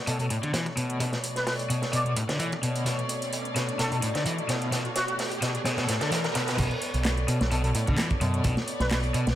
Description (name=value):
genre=breakbeat, breaks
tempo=129 BPM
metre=4/4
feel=swing 54% on 16ths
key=B minor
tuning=A4 = 444 Hz
part: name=rich studio string section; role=sustained chords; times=0.0-9.4 s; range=B2 to D5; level=-33 LUFS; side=equal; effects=sidechain pumping
part: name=riser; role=sound effects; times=1.4-6.6 s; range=none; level=-36 LUFS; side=right 1 dB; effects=none
part: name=trumpet with plunger mute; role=melody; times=0.1-9.0 s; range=F#4 to D5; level=-34 LUFS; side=equal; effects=telephone sound, low-pass filter, tape echo
part: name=overdriven semi-hollow guitar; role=riff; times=0.1-9.2 s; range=A2 to E3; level=-29 LUFS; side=left 1 dB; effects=tremolo, low-pass filter, tape echo
part: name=crunchy breakbeat drum kit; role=drums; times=0.1-9.4 s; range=crash cymbal, hi-hat, kick drum, snare drum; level=-31 LUFS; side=right 1 dB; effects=high-pass filter on kick, high-pass filter on hats, high-pass filter on cymbals, high-pass filter on snare, high-pass filter on room
part: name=house drum kit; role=drums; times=0.1-9.4 s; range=handclaps, hi-hat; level=-36 LUFS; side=right 1 dB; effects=overdrive
part: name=deep dub picked electric bass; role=bass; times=6.6-9.4 s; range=B1 to B2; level=-27 LUFS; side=right 1 dB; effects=none
room=light reverb, small room ambience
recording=none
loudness=-25 LUFS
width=side -12 dB against mid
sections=0.0-6.6 A section; 6.6-9.4 B section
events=build-up 0.0-6.6; riser 1.4-6.6; drum fill 2.9-6.6; drop 6.6-9.4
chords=0.0 Bm9